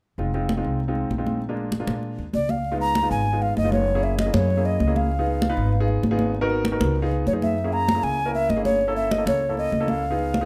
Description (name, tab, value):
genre	Afro-Cuban jazz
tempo	195 BPM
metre	4/4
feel	straight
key	Db mixolydian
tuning	A4 = 442 Hz
part	warm concert grand piano	accompaniment	0.2-10.5 s	Ab3 to Cb5	-29 LUFS	equal	none
part	upright bass	bass	0.2-10.4 s	F1 to Bb2	-28 LUFS	equal	none
part	congas	percussion	0.2-10.5 s	none	-29 LUFS	equal	none
part	breathy bright alto ocarina	melody	2.3-10.5 s	Db5 to Bb5	-26 LUFS	equal	none
room	light reverb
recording	none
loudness	-23 LUFS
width	mono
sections	0.2-2.6 A section; 2.6-10.5 B section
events	none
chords	0.2 Fm7; 1.4 Bb7; 2.6 Db7; 3.9 Gb7; 5.1 Db7; 6.3 Abm7; 7.0 Db7; 7.6 Gb7; 8.8 Gdim7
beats	| 0.18 0.49 0.80 1.11 | 1.41 1.72 2.03 2.34 | 2.65 2.96 3.26 3.57 | 3.88 4.19 4.49 4.80 | 5.11 5.42 5.72 6.03 | 6.34 6.65 6.95 7.26 | 7.57 7.88 8.19 8.49 | 8.80 9.11 9.41 9.72 | 10.03 10.34